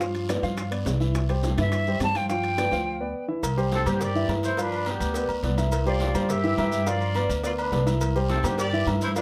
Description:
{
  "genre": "latin, salsa",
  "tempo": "210 BPM",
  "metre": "4/4",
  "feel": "straight",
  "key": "C major",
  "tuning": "A4 = 440 Hz",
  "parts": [
    { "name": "dark grand piano", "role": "accompaniment", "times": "0.0-9.2 s", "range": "E3 to F5", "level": "-30 LUFS", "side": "equal", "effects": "none" },
    { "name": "upright bass", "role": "bass", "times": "0.0-9.2 s", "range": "C2 to G2", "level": "-29 LUFS", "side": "equal", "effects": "none" },
    { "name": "bongos and cowbell", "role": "percussion", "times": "0.0-9.2 s", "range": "none", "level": "-39 LUFS", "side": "equal", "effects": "none" },
    { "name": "congas", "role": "percussion", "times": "0.0-9.2 s", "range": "none", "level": "-38 LUFS", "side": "equal", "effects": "none" },
    { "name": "guiro", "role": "percussion", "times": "0.0-9.2 s", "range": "none", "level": "-44 LUFS", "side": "equal", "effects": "none" },
    { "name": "maracas", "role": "percussion", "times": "0.0-9.2 s", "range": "none", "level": "-44 LUFS", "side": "equal", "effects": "none" },
    { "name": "timbales and agogo bells", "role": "percussion", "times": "0.1-9.2 s", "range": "none", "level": "-38 LUFS", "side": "equal", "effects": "none" },
    { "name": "bright silver concert flute", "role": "melody", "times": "1.6-3.3 s", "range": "E5 to A5", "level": "-29 LUFS", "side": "equal", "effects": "none" },
    { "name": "mellow horn section", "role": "melody", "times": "3.7-9.2 s", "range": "B3 to E5", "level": "-32 LUFS", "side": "equal", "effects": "none" }
  ],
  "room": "light reverb",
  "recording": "none",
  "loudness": "-25 LUFS",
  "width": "mono",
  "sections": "0.0-3.4 A section; 3.4-9.2 B section",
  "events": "break 2.9-3.4",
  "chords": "0.0 G7; 1.2 C; 2.3 G7; 3.4 Cadd9; 4.6 G7; 5.7 Cadd9; 6.9 G7; 8.0 Cadd9"
}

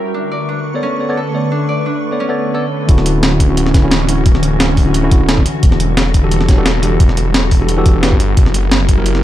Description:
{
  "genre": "liquid drum and bass",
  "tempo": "175 BPM",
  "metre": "4/4",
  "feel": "swing 53% on 16ths",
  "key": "D major",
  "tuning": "A4 = 439 Hz",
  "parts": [
    { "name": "glassy FM pad", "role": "sustained chords", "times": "0.0-9.2 s", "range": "D3 to C#6", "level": "-20 LUFS", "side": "left 1 dB", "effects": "ensemble chorus, built-in reverb, sidechain pumping" },
    { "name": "Celtic harp", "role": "arpeggios", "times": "0.0-5.1 s", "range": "C#4 to D5", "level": "-23 LUFS", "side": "right 2 dB", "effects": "dub echo" },
    { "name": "tine electric piano", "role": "accompaniment", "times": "0.7-9.2 s", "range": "D3 to D5", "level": "-19 LUFS", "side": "equal", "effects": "digital delay" },
    { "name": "swelling detuned saw bass", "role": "bass", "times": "2.9-9.2 s", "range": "D1 to G1", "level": "-16 LUFS", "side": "equal", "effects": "none" },
    { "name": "breakbeat sampler-style drum kit", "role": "drums", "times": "2.9-9.2 s", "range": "hi-hat, snare drum", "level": "-17 LUFS", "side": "equal", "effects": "small room ambience" },
    { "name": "electronic kick drum", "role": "drums", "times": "2.9-9.0 s", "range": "none", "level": "-11 LUFS", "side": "equal", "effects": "small room ambience" }
  ],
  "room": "digital ambience",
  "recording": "dark, warm production",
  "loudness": "-11 LUFS",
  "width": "side -13 dB against mid",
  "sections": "0.0-2.9 A section; 2.9-9.2 B section",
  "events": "filter sweep on tine electric piano 0.0-2.9; drop 2.9-9.2",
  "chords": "0.1 Bm9; 2.9 Dmaj9; 5.5 Em11; 8.4 F#7b9"
}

